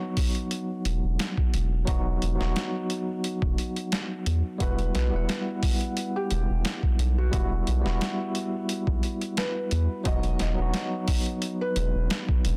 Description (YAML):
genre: trip hop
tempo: 88 BPM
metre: 4/4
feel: straight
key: E harmonic minor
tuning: A4 = 440 Hz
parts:
  - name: tine electric piano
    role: accompaniment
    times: 0.0-12.6 s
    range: F#3 to F#5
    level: -33 LUFS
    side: equal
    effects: tremolo, tape echo
  - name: boom bap sampler-style drum kit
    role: drums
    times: 0.2-12.6 s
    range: hi-hat, kick drum, snare drum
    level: -30 LUFS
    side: equal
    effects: none
  - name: round analog bass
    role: bass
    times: 0.9-12.6 s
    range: E1 to E2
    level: -28 LUFS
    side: equal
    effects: none
  - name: felt-muted upright piano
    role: melody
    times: 4.6-12.2 s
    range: F#4 to D#5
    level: -37 LUFS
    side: equal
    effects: dub echo
room: digital ambience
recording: dense, heavily limited modern master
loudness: -27 LUFS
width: mono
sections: 0.0-12.6 A section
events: none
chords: 0.0 B/E; 4.6 Emadd9; 10.1 B/E